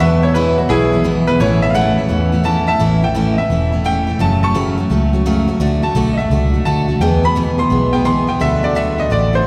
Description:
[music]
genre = country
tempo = 171 BPM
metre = 4/4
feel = swing 65% on 8ths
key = A major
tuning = A4 = 440 Hz
[part]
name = bright upright piano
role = melody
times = 0.0-9.5 s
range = E4 to C#6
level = -21 LUFS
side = equal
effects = none
[part]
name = picked steel-string acoustic guitar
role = accompaniment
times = 0.0-9.5 s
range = E2 to G#4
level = -20 LUFS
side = equal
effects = none
[part]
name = pedal steel guitar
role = sustained chords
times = 0.0-2.8, 8.4-9.5 s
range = A4 to A5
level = -32 LUFS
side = equal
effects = none
[part]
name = vintage muted fingered electric bass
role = bass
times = 0.0-9.5 s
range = E1 to E2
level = -20 LUFS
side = equal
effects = none
[sound]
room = wet cathedral reverb, RT60 6.0 s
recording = recorded in a church or concert hall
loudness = -15 LUFS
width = mono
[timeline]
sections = 0.0-2.8 A section; 2.8-9.5 A section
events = upright piano solo 0.0-2.8, 2.8-9.5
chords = 0.0 E; 1.4 A; 4.2 F#m; 5.6 D; 7.0 E; 8.4 D

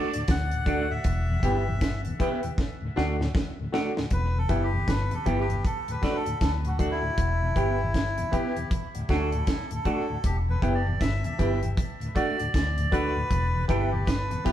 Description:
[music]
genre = roots reggae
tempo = 78 BPM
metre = 4/4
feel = swing 61% on 16ths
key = E minor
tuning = A4 = 443 Hz
[part]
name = melodica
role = melody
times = 0.0-14.5 s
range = E4 to F#5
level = -32 LUFS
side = equal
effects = dub echo
[part]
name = mellow tonewheel organ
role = accompaniment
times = 0.0-14.5 s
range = D2 to G4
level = -34 LUFS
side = left 1 dB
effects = slow rotary speaker
[part]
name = semi-hollow electric guitar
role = accompaniment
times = 0.0-14.5 s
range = A3 to G4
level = -33 LUFS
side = right 4 dB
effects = phaser
[part]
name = bright reed electric piano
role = stabs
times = 0.0-14.5 s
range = F#4 to G5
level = -33 LUFS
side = left 1 dB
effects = overdrive, fast tremolo
[part]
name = deep reggae drum kit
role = drums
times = 0.1-14.5 s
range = hi-hat, kick drum, snare drum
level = -29 LUFS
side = equal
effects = none
[part]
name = vintage muted fingered electric bass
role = bass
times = 0.3-14.4 s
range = E1 to D2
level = -28 LUFS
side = equal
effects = none
[sound]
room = wet stone room reverb, RT60 1.1 s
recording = band playing live in one room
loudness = -24 LUFS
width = side -11 dB against mid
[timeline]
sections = 0.0-4.1 A section; 4.1-14.5 B section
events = drum fill 2.6-4.1; melodica solo 4.1-14.5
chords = 0.0 D; 1.1 Em; 2.6 D; 4.1 Em; 5.6 D; 7.2 Em; 8.7 D; 10.2 Em; 11.8 D; 13.3 Em

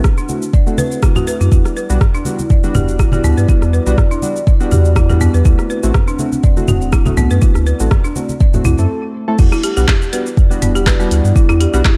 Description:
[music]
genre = afro house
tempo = 122 BPM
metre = 4/4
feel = swing 54% on 16ths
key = E minor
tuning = A4 = 440 Hz
[part]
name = dark analog pad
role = sustained chords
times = 0.0-12.0 s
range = C4 to F#5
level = -27 LUFS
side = equal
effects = chorus, phaser, sidechain pumping
[part]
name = deep house drum kit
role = drums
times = 0.0-12.0 s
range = cabasa, crash cymbal, handclaps, hi-hat, rim click, toms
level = -24 LUFS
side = equal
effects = none
[part]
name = electronic kick drum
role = drums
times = 0.0-12.0 s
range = none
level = -14 LUFS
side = equal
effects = none
[part]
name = folk marimba with hard mallets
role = arpeggios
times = 0.2-11.8 s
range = B3 to D5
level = -24 LUFS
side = equal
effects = sidechain pumping, tape echo
[part]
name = warm analog keys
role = stabs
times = 0.3-11.8 s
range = G3 to A4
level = -24 LUFS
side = equal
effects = chorus, sidechain pumping, tape echo
[part]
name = congas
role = percussion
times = 0.3-8.8 s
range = none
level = -22 LUFS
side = equal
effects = none
[part]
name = warm sub bass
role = bass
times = 1.4-11.8 s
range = D1 to G2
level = -16 LUFS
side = equal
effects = sidechain pumping
[sound]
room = little or no reverb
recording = dark, warm production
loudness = -14 LUFS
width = mono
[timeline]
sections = 0.0-9.4 A section; 9.4-12.0 B section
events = break 8.9-9.4; drop 9.4-12.0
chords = 0.0 D7; 1.5 Em7; 5.5 D7; 9.4 Em7

